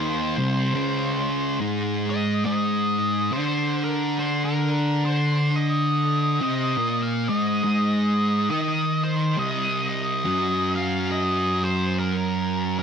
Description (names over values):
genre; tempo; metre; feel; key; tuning
metal; 69 BPM; 4/4; swing 59% on 8ths; C minor; A4 = 440 Hz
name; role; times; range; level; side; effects
octave-fuzz lead guitar; melody; 0.0-12.8 s; Bb4 to F5; -26 LUFS; equal; wah, distortion, slapback echo
thick fuzz guitar; riff; 0.0-12.8 s; C2 to Eb4; -22 LUFS; equal; distortion
room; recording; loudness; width
little or no reverb; dry, close 1970s-style studio recording; -21 LUFS; side -7 dB against mid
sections
0.0-12.8 A section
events
none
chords
0.0 Cm; 2.5 Ab5; 9.4 Cm